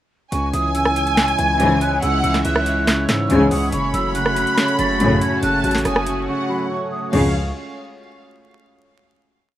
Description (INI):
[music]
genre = hip hop, trap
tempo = 141 BPM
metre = 4/4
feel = half-time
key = C# minor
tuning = A4 = 441 Hz
[part]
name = breathy mellow silver concert flute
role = melody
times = 0.3-7.3 s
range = B5 to A6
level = -24 LUFS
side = right 2 dB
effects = low-pass filter
[part]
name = rich studio violin section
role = second line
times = 0.3-7.3 s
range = E5 to B5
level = -23 LUFS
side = equal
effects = digital delay
[part]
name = felt-muted upright piano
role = accompaniment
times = 0.3-7.3 s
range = C#3 to C#4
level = -25 LUFS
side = right 1 dB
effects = low-pass filter
[part]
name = sweeping resonant pad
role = sustained chords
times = 0.3-7.3 s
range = G#3 to C#5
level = -26 LUFS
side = right 1 dB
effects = chorus
[part]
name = distorted 808-style bass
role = bass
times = 0.3-7.5 s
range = F#1 to G#2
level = -24 LUFS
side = equal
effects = distortion
[part]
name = trap drum kit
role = drums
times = 0.3-7.2 s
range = crash cymbal, hi-hat, rim click, snare drum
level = -22 LUFS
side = equal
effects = overdrive
[part]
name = warm symphonic string section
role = stabs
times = 1.6-7.3 s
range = G#1 to E3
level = -18 LUFS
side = left 2 dB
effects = none
[sound]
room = light reverb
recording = rough home demo mix, vinyl crackle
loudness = -16 LUFS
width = side -12 dB against mid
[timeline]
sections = 0.3-7.1 hook; 7.1-8.8 final chord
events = break 6.3-7.1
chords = 0.3 C#m; 3.7 F#m; 7.1 C#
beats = | 0.32 0.75 1.17 1.60 | 2.02 2.45 2.88 3.30 | 3.73 4.15 4.58 5.00 | 5.43 5.85 6.28 6.71 | 7.13